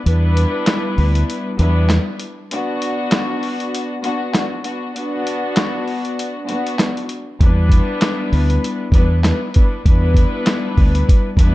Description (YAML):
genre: hip hop, boom-bap hip-hop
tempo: 98 BPM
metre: 4/4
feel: swing 58% on 16ths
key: unclear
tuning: A4 = 440 Hz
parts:
  - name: warm studio string section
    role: accompaniment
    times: 0.0-11.5 s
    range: G3 to B4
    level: -21 LUFS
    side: left 2 dB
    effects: high-pass filter, low-pass filter
  - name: deep dub fingered electric bass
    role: bass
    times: 0.1-2.0, 7.4-11.5 s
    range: D2 to E2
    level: -15 LUFS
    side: equal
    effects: none
  - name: lo-fi sampler-style drum kit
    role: drums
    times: 0.1-11.5 s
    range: handclaps, hi-hat, kick drum, snare drum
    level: -16 LUFS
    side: equal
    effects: vintage 12-bit sampler grit
room: digital ambience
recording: dark, warm production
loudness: -15 LUFS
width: side -17 dB against mid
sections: 0.0-11.5 A section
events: break 0.0-7.4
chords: 0.0 Em7; 2.5 Bm; 7.4 Em7